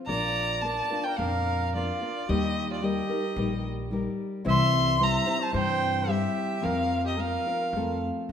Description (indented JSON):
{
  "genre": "mexican folk, mariachi",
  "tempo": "110 BPM",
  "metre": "4/4",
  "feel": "rubato",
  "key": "Bb major",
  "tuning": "A4 = 440 Hz",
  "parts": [
    { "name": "nylon-string guitar", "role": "accompaniment", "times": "0.0-8.3 s", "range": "Bb2 to C5", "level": "-30 LUFS", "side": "left 4 dB", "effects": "none" },
    { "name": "warm violin", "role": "melody", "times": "0.1-8.0 s", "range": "D5 to C6", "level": "-29 LUFS", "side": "left 1 dB", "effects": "none" },
    { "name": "warm trumpet", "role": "second line", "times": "0.1-8.0 s", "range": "F4 to E5", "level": "-32 LUFS", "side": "right 7 dB", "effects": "none" },
    { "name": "upright bass", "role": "bass", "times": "0.1-8.3 s", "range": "Bb1 to G2", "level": "-31 LUFS", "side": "equal", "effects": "none" }
  ],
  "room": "wet recital hall reverb, RT60 1.5 s",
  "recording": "minimal, uncompressed stereo recording",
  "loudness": "-24 LUFS",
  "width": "side -8 dB against mid",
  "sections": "0.1-8.3 A section",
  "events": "none",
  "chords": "0.1 Bb; 2.3 Eb; 4.5 C; 6.6 Fsus4; 7.7 F"
}